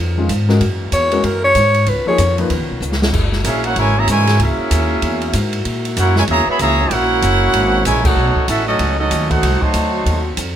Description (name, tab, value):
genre	jazz, big band swing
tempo	191 BPM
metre	4/4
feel	swing 62% on 8ths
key	unclear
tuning	A4 = 440 Hz
part	warm saxophone section	sustained chords	0.0-10.5 s	C#3 to F#4	-28 LUFS	left 3 dB	none
part	upright bass	bass	0.0-10.6 s	F#1 to A#2	-18 LUFS	equal	none
part	warm concert grand piano	accompaniment	0.2-2.5 s	D#3 to B4	-20 LUFS	left 3 dB	none
part	open jazz drum kit	drums	0.3-10.5 s	crash cymbal, hi-hat, kick drum, ride cymbal, snare drum	-22 LUFS	right 1 dB	none
part	breathy alto saxophone	melody	0.9-2.4 s	A#4 to C#5	-14 LUFS	left 1 dB	none
part	bright trombone section	second line	3.4-10.3 s	C#3 to F#4	-22 LUFS	right 3 dB	none
part	clear trumpet section	melody	3.5-10.3 s	C#4 to B5	-17 LUFS	right 1 dB	none
room	light reverb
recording	none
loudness	-13 LUFS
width	side -10 dB against mid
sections	0.0-3.1 A section; 3.1-10.6 B section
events	alto saxophone solo 0.0-3.1; drum fill 2.8-3.1; band accent 8.0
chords	0.0 C#9; 0.6 F#9; 1.9 C#9; 3.1 F#9; 8.2 B9; 9.4 Cdim7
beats	0.29 | 0.61 0.92 1.24 1.55 | 1.87 2.18 2.50 2.81 | 3.13 3.44 3.76 4.07 | 4.39 4.70 5.02 5.33 | 5.65 5.96 6.28 6.59 | 6.91 7.22 7.54 7.85 | 8.17 8.48 8.80 9.11 | 9.43 9.74 10.05 10.37